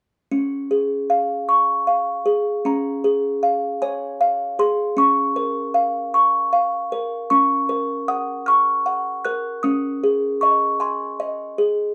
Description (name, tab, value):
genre	children's music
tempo	51 BPM (dotted quarters)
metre	6/8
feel	straight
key	Db major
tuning	A4 = 440 Hz
part	music box	melody	0.3-11.9 s	Db4 to Gb6	-20 LUFS	equal	none
room	little or no reverb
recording	dry, close 1970s-style studio recording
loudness	-20 LUFS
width	mono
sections	0.3-2.6 A section; 2.6-11.9 B section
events	none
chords	0.3 Db; 5.0 Bbm; 7.3 Gb; 9.6 Absus4; 10.8 Ab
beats	| 0.31 1.48 | 2.65 3.82 | 4.98 6.14 | 7.31 8.47 | 9.64 10.81